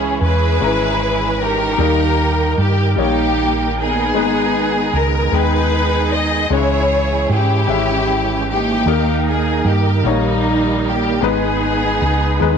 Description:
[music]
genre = gospel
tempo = 51 BPM (dotted quarters)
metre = 6/8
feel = straight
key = G# harmonic minor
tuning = A4 = 440 Hz
[part]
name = rich studio string section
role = melody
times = 0.0-12.6 s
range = G3 to D#5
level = -17 LUFS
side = left 1 dB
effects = none
[part]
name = clear grand piano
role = accompaniment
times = 0.0-12.6 s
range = G#2 to A#5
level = -22 LUFS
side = left 13 dB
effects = none
[part]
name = overdriven tonewheel organ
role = sustained chords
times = 0.0-12.6 s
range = D#3 to G5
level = -23 LUFS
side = right 14 dB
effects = slow rotary speaker, chorus vibrato
[part]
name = hollow-body short-scale fingered electric bass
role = bass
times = 0.0-12.6 s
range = G#1 to G#2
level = -19 LUFS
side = right 1 dB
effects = none
[sound]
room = light reverb, studio reverb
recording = 1960s-style stereo with parts hard left and right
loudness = -14 LUFS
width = side -7 dB against mid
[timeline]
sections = 0.0-12.6 A section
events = tonewheel organ fill 12.4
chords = 0.0 C#m; 1.8 D#; 4.1 G#m; 6.5 C#m; 8.9 D#; 11.2 G#m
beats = 0.61 | 1.79 2.96 | 4.14 5.32 | 6.50 7.68 | 8.86 10.05 | 11.23 12.41

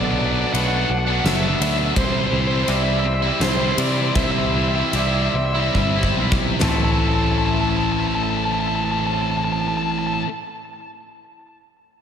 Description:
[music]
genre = post-rock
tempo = 68-84 BPM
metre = 3/4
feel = straight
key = A dorian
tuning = A4 = 440 Hz
[part]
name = overdriven electric guitar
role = melody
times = 0.0-10.2 s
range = C5 to A5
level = -25 LUFS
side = equal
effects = slapback echo, analog delay
[part]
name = dark chamber string section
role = sustained chords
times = 0.0-10.2 s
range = A3 to C6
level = -35 LUFS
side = left 1 dB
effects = none
[part]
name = electric guitar through a small old amp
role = arpeggios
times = 0.0-7.6 s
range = A4 to D5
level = -32 LUFS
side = right 6 dB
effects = slapback echo, analog delay
[part]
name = twangy electric guitar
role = arpeggios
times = 0.0-10.3 s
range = A2 to E4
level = -29 LUFS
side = left 3 dB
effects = analog delay
[part]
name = distorted electric guitar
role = riff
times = 0.0-10.3 s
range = A2 to E4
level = -26 LUFS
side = right 10 dB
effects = overdrive, slapback echo
[part]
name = tight distorted guitar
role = riff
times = 0.0-10.3 s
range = A2 to E4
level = -26 LUFS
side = left 12 dB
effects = distortion
[part]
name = picked electric bass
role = bass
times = 0.0-10.2 s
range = F#1 to C3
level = -24 LUFS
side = equal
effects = none
[part]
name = huge arena drum kit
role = drums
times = 0.5-6.8 s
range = kick drum, ride cymbal, snare drum, toms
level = -24 LUFS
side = equal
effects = none
[sound]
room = moderate lush hall reverb, RT60 2.6 s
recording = big arena sound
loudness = -17 LUFS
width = side -8 dB against mid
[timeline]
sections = 0.0-6.6 A section; 6.6-11.9 B section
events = slowing down 2.0-6.6; drum fill 5.8-6.6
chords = 0.0 Bm7; 2.0 C; 6.6 Am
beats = 0.54 1.25 | 1.97 2.68 3.41 | 4.16 4.94 5.75 | 6.62 7.50 8.39 | 9.28 10.17

